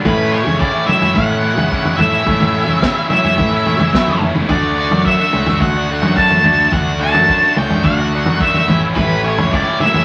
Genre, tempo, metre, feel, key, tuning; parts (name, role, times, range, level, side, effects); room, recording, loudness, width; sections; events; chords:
psychedelic rock; 108 BPM; 4/4; straight; A major; A4 = 439 Hz
crunchy overdriven guitar; riff; 0.0-10.0 s; A2 to F#4; -21 LUFS; equal
fuzz fingered electric bass; bass; 0.0-10.0 s; F#1 to C#3; -22 LUFS; equal; overdrive
octave-fuzz lead guitar; melody; 0.1-10.0 s; B4 to A5; -18 LUFS; equal; distortion
vintage drum kit; drums; 0.1-10.0 s; kick drum, snare drum, toms; -20 LUFS; equal
wet studio reverb, RT60 0.5 s; vinyl crackle; -14 LUFS; mono
0.0-10.0 A section
0.1 A; 4.5 D; 8.7 A